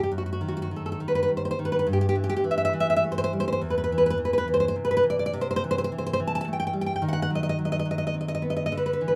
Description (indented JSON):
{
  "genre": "romantic piece for solo classical guitar",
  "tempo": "104 BPM",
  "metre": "3/4",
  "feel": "rubato",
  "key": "unclear",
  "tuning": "A4 = 440 Hz",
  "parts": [
    { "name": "nylon-string guitar", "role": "solo", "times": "0.0-9.2 s", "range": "E2 to A5", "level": "-26 LUFS", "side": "equal", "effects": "none" }
  ],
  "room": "moderate studio reverb, RT60 0.5 s",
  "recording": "none",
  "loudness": "-26 LUFS",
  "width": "mono",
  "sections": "0.0-9.2 A section",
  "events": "none",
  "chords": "0.1 B(b13)/F#; 1.9 Em/G; 3.6 Cmaj7/E; 5.3 C; 7.0 B/D#",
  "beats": "| 0.09 0.69 1.28 | 1.85 2.43 3.01 | 3.60 4.17 4.73 | 5.30 5.88 6.44 | 7.00 7.57 8.15 | 8.73"
}